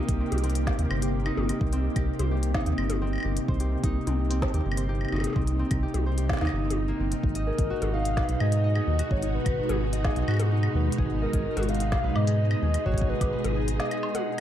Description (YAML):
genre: IDM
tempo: 128 BPM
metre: 4/4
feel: straight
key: C minor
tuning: A4 = 440 Hz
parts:
  - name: soft string machine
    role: sustained chords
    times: 0.0-14.4 s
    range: Cb3 to Ab4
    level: -31 LUFS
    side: equal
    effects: ensemble chorus
  - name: concert harp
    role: arpeggios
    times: 0.0-14.4 s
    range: Bb3 to Gb5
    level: -33 LUFS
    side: right 1 dB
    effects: tape echo
  - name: round analog bass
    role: bass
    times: 0.1-13.8 s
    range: G1 to Ab2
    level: -27 LUFS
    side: equal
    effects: none
  - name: electronic kick drum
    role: drums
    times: 0.1-13.3 s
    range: none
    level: -28 LUFS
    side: equal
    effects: none
  - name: organic electronic drum kit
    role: drums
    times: 0.1-14.2 s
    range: hi-hat, snare drum, toms, woodblock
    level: -34 LUFS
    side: left 2 dB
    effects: digital delay
  - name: warbly nostalgic lead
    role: melody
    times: 7.5-13.6 s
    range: Bb4 to F5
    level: -33 LUFS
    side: left 1 dB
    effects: chorus, cassette tape, tape echo
room: digital ambience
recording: dark, warm production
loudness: -24 LUFS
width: side -11 dB against mid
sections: 0.0-14.4 A section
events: none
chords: 0.0 Cm7; 7.2 Abm7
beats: 0.20 0.67 1.14 | 1.61 2.08 2.55 3.02 | 3.48 3.95 4.42 4.89 | 5.36 5.83 6.30 6.76 | 7.23 7.70 8.17 8.64 | 9.11 9.58 10.05 10.52 | 10.98 11.45 11.92 12.39 | 12.86 13.33 13.80 14.27